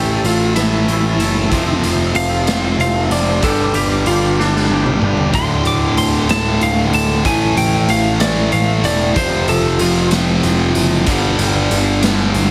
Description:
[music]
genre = quiet-loud alternative rock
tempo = 63 BPM (dotted quarters)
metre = 6/8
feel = straight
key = unclear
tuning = A4 = 440 Hz
[part]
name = lightly driven lead guitar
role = melody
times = 0.0-10.1 s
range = D4 to D6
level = -22 LUFS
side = equal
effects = plate reverb, analog delay
[part]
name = twangy electric guitar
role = arpeggios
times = 0.0-5.3 s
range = F2 to A4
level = -26 LUFS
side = equal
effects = ensemble chorus, plate reverb
[part]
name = tight distorted guitar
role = riff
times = 0.0-12.5 s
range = D2 to A3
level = -22 LUFS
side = equal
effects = distortion
[part]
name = fuzz picked electric bass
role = bass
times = 0.0-12.5 s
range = D1 to A1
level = -21 LUFS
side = equal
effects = overdrive
[part]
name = raw garage drum kit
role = drums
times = 0.2-12.5 s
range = hi-hat, kick drum, snare drum, toms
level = -23 LUFS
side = equal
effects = none
[part]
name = fuzz guitar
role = riff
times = 5.3-12.5 s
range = D2 to A3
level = -22 LUFS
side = equal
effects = distortion
[sound]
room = moderate large studio reverb, RT60 0.8 s, small room ambience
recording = heavily compressed radio sound, multiband compression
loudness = -15 LUFS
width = mono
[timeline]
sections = 0.0-12.5 A section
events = lead electric guitar solo 0.0-12.5; drum fill 4.4-5.3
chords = 0.0 A5; 1.5 F; 3.4 G; 5.3 D5; 7.3 A5; 9.2 F5; 11.1 G5

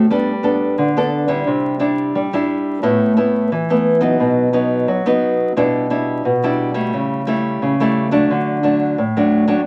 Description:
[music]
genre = samba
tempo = 88 BPM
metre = 4/4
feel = straight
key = G major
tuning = A4 = 440 Hz
[part]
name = nylon-string guitar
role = solo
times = 0.0-9.6 s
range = A2 to A4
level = -17 LUFS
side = equal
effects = none
[sound]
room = moderate club reverb, RT60 0.5 s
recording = vinyl crackle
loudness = -17 LUFS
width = mono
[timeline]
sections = 0.1-9.7 A section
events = none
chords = 0.1 Gadd9; 1.5 Cadd9; 2.8 Asus2; 4.2 B; 5.6 Em7/B; 6.9 A7/C#; 8.3 D

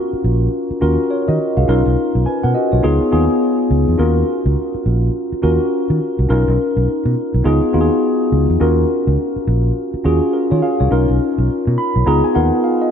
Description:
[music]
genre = R&B, new jack swing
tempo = 104 BPM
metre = 4/4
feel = swing 61% on 16ths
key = Eb minor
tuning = A4 = 443 Hz
[part]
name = mellow tine electric piano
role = accompaniment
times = 0.0-12.9 s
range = Cb4 to B5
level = -16 LUFS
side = left 1 dB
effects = lush chorus
[part]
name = fingered electric bass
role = bass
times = 0.1-12.5 s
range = Bb1 to Eb3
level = -16 LUFS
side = equal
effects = none
[sound]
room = moderate lush hall reverb, RT60 3.0 s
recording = dreamy mix soaked in reverb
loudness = -14 LUFS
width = side -8 dB against mid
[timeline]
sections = 0.0-12.9 A section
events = tine electric piano fill 11.5-12.9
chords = 0.0 Ebm9; 1.7 Bmaj9#11; 2.8 Db9; 4.0 Ebm9; 6.3 Bmaj9#11; 7.4 Db9; 8.6 Ebm9; 10.9 Bmaj9#11; 12.1 Db9

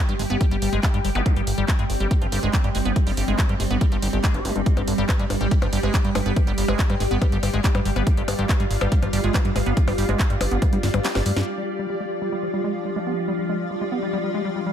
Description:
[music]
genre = psychedelic trance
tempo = 141 BPM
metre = 4/4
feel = straight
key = unclear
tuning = A4 = 440 Hz
[part]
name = evolving wavetable pad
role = sustained chords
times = 0.0-14.7 s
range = F3 to G4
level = -28 LUFS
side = right 1 dB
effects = ensemble chorus, built-in reverb, phaser, sidechain pumping
[part]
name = liquid acid bass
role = riff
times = 0.0-14.7 s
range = F3 to G4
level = -29 LUFS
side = moving between left 8 dB and right 8 dB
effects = chorus, auto-pan, sidechain pumping, tape echo
[part]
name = granular cloud pad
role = texture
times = 0.1-14.7 s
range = G4 to G5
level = -30 LUFS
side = equal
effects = built-in reverb, sidechain pumping
[part]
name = fat analog bass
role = bass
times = 0.1-11.4 s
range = G1 to G2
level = -24 LUFS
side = equal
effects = none
[part]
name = techno drum kit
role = drums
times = 0.1-11.4 s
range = handclaps, hi-hat, percussion blips, snare drum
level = -29 LUFS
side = left 2 dB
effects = low-pass filter on hats, low-pass filter on snare, low-pass filter on perc, low-pass filter on room
[part]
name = electronic kick drum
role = drums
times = 0.4-10.7 s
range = none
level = -21 LUFS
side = equal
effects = none
[part]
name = zap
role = sound effects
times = 1.2-1.3 s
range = none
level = -33 LUFS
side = equal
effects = none
[sound]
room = little or no reverb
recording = none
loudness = -20 LUFS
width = side -9 dB against mid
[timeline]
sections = 0.0-11.5 A section; 11.5-14.7 B section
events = drum fill 10.8-11.5; kick drops out 11.0-11.5; filter sweep on acid bass 11.5-14.7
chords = 0.0 G5

